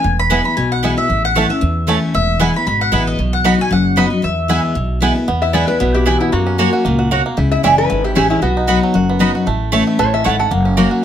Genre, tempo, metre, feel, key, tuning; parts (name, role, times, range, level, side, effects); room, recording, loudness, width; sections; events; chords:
bluegrass; 229 BPM; 4/4; swing 55% on 8ths; E major; A4 = 438 Hz
mandolin; melody; 0.0-5.0 s; D#5 to B5; -19 LUFS; left 1 dB
picked steel-string acoustic guitar; accompaniment; 0.0-11.0 s; E2 to F#4; -17 LUFS; left 3 dB
upright bass; bass; 0.0-10.9 s; E1 to F#2; -19 LUFS; right 1 dB
bluegrass banjo; melody; 0.3-11.0 s; F#3 to A4; -22 LUFS; right 5 dB
mandolin; stabs; 0.3-10.9 s; A3 to B5; -18 LUFS; right 5 dB
lap resonator guitar; second line; 5.4-10.7 s; E4 to F#5; -19 LUFS; left 4 dB
moderate studio reverb, RT60 0.8 s; -13 LUFS; side -10 dB against mid
0.0-5.3 A section; 5.3-11.0 B section
resonator guitar played with a steel bar solo 5.3-11.0
0.0 E; 1.1 A; 2.1 E; 3.2 B; 4.2 E; 6.3 F#; 7.4 C#m; 8.4 B; 9.5 A; 10.5 F#